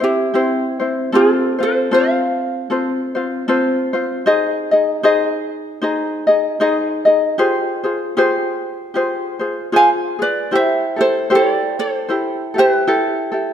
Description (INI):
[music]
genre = Hawaiian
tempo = 77 BPM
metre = 4/4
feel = swing 58% on 8ths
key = unclear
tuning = A4 = 440 Hz
[part]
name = ukulele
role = melody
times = 0.0-3.9, 9.8-13.5 s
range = E4 to Ab5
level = -16 LUFS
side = right 2 dB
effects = none
[part]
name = ukulele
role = accompaniment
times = 0.0-13.5 s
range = C4 to Eb5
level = -16 LUFS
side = left 1 dB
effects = none
[sound]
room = moderate scoring stage reverb, RT60 1.6 s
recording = none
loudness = -15 LUFS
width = side -9 dB against mid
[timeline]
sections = 0.0-13.5 A section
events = none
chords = 0.0 C; 1.1 F; 4.3 Ab; 7.4 Fmadd9; 10.5 C6